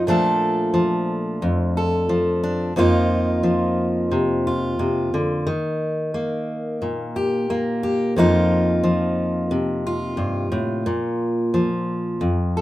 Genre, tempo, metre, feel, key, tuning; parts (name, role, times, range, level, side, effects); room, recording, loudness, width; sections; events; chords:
folk; 89 BPM; 4/4; straight; F mixolydian; A4 = 440 Hz
fingerpicked steel-string acoustic guitar; solo; 0.0-12.6 s; F2 to A4; -19 LUFS; equal
light reverb; minimal, uncompressed stereo recording; -19 LUFS; side -15 dB against mid
0.0-12.6 A section
0.1 Bbmaj7; 2.8 F7sus4; 5.5 Eb; 8.2 F7sus4; 10.9 Bb5